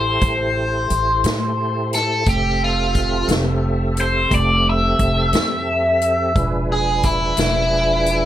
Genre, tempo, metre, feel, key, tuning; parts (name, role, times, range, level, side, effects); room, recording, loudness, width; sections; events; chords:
slow blues; 59 BPM (dotted quarters); 12/8; straight; A4 = 442 Hz
overdriven electric guitar; melody; 0.0-8.3 s; E4 to E5; -19 LUFS; left 1 dB; phaser
tonewheel organ; sustained chords; 0.0-8.3 s; F3 to E5; -25 LUFS; right 2 dB; slow rotary speaker, chorus vibrato
upright bass; bass; 0.0-8.3 s; E1 to A2; -22 LUFS; equal
swinging big-band drum kit; drums; 0.2-8.2 s; hi-hat, kick drum, snare drum; -22 LUFS; equal
little or no reverb; -16 LUFS; side -12 dB against mid
0.0-8.3 A section
overdriven electric guitar solo 0.0-8.3
0.0 Am7; 2.3 Fmaj7; 6.4 E7b9